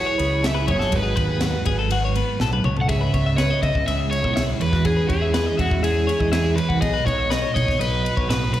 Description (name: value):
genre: math rock and midwest emo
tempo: 122 BPM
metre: 4/4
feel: straight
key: C# minor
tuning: A4 = 439 Hz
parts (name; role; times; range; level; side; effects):
- overdriven semi-hollow guitar; melody; 0.0-8.6 s; F#4 to F#5; -24 LUFS; equal; slapback echo
- twelve-string electric guitar; accompaniment; 0.0-8.6 s; G#2 to B4; -26 LUFS; right 4 dB; harmonic tremolo
- twelve-string electric guitar; arpeggios; 0.0-8.6 s; F#4 to E5; -28 LUFS; left 8 dB; slapback echo
- growling fingered electric bass; bass; 0.2-8.5 s; G1 to E2; -23 LUFS; equal; overdrive
- crisp fusion drum kit; drums; 0.2-8.6 s; kick drum, ride cymbal, snare drum, toms; -26 LUFS; equal; none
room: little or no reverb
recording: live gig heard through the venue's PA, recital hall reverb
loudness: -18 LUFS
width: side -12 dB against mid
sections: 0.0-2.9 A section; 2.9-8.6 B section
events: drum fill 2.4-2.9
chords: 0.0 F#m11; 0.9 G#m7; 2.9 C#m7; 4.6 E6; 6.8 B6